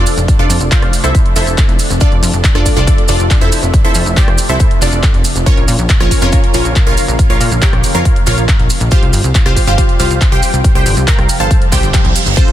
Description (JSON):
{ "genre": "uplifting trance", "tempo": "139 BPM", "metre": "4/4", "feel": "straight", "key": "F major", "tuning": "A4 = 440 Hz", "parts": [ { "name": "wide unison pluck", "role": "melody", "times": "0.0-12.5 s", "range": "C4 to Bb5", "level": "-17 LUFS", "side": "right 1 dB", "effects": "phaser, sidechain pumping, tape echo" }, { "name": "lush unison pad", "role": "sustained chords", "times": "0.0-12.5 s", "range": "C3 to F4", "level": "-22 LUFS", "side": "equal", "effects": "chorus, phaser, sidechain pumping" }, { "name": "plucky analog bass", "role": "bass", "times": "0.0-12.5 s", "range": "F1 to Bb2", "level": "-15 LUFS", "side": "equal", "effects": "sidechain pumping" }, { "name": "sub drop and reverse cymbal", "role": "sound effects", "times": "0.0-0.3, 11.7-12.4 s", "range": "none", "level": "-21 LUFS", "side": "right 5 dB", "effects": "none" }, { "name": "big-room dance drum kit", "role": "drums", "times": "0.1-12.5 s", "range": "crash cymbal, handclaps, hi-hat, rim click", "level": "-20 LUFS", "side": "left 1 dB", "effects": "none" }, { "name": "maracas", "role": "percussion", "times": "0.1-12.5 s", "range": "none", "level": "-22 LUFS", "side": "right 5 dB", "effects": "none" }, { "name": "electronic kick drum", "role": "drums", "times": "0.3-12.5 s", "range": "none", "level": "-11 LUFS", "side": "equal", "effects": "none" } ], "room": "digital ambience", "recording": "dense, heavily limited modern master", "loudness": "-9 LUFS", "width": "side -12 dB against mid", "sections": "0.0-12.5 A section", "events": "impact 0.0; reverse cymbal 11.7-12.4", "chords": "0.0 F6; 5.5 Bbm; 8.9 Csus4", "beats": "| 0.28 0.71 1.15 1.58 | 2.01 2.44 2.87 3.31 | 3.74 4.17 4.60 5.03 | 5.46 5.89 6.33 6.76 | 7.19 7.62 8.05 8.48 | 8.92 9.35 9.78 10.21 | 10.64 11.07 11.51 11.94 | 12.37" }